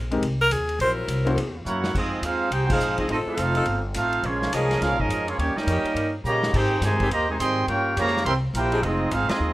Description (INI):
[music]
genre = jazz, big band swing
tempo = 209 BPM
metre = 4/4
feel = swing 62% on 8ths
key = F minor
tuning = A4 = 442 Hz
[part]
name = upright bass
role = bass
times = 0.0-9.5 s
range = F1 to Bb2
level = -27 LUFS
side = equal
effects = none
[part]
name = clear grand piano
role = accompaniment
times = 0.1-1.4 s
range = Ab3 to C5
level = -25 LUFS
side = left 2 dB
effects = none
[part]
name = vintage drum kit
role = drums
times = 0.1-9.3 s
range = crash cymbal, hi-hat, kick drum, ride cymbal, snare drum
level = -32 LUFS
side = equal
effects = none
[part]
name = clear tenor saxophone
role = melody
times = 0.4-0.9 s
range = Ab4 to C5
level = -21 LUFS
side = equal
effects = none
[part]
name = bright saxophone section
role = sustained chords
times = 0.8-8.8 s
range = Eb3 to Bb4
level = -29 LUFS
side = left 2 dB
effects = none
[part]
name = warm trumpet section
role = melody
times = 1.7-9.5 s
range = Bb3 to C6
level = -25 LUFS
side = right 1 dB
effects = none
[part]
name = bright trombone section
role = second line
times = 1.7-9.5 s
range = C3 to G4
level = -28 LUFS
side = right 2 dB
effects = none
[sound]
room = light reverb, small room ambience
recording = rough home demo mix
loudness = -21 LUFS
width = side -16 dB against mid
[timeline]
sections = 0.0-1.9 A section; 1.9-9.5 B section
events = tenor saxophone solo 0.0-1.9; drum fill 1.7, 6.3; band accent 2.7, 9.3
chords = 0.0 Abadd9; 0.8 Gb7#11; 1.9 Fm7; 3.1 F7; 4.2 Bbm7; 5.4 Eb7; 6.5 Abmaj7; 7.7 Gm7b5; 8.3 C7; 8.8 Fm7